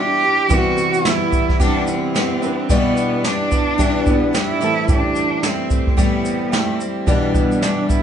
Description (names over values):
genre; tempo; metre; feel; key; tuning
acoustic pop; 110 BPM; 4/4; swing 60% on 16ths; E minor; A4 = 440 Hz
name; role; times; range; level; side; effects
warm cello; melody; 0.0-8.0 s; G3 to G4; -20 LUFS; right 2 dB; none
picked twelve-string acoustic guitar; accompaniment; 0.0-8.0 s; E2 to E4; -21 LUFS; left 3 dB; none
felt-muted upright piano; accompaniment; 0.5-8.0 s; B2 to B4; -30 LUFS; equal; none
direct-recorded clean electric guitar; arpeggios; 0.5-8.0 s; E3 to G4; -25 LUFS; right 7 dB; none
jazz brush drum kit; drums; 0.5-8.0 s; kick drum, shaker, snare drum; -19 LUFS; right 1 dB; none
pedal steel guitar; second line; 7.3-8.0 s; B3 to E4; -24 LUFS; right 5 dB; none
room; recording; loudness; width
light reverb; band playing live in one room, nothing above 10.3 kHz; -15 LUFS; side -8 dB against mid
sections
0.0-8.0 A section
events
none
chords
0.0 Em7; 0.5 Cmaj7; 2.4 Em7; 4.6 Am7; 7.1 Em7/B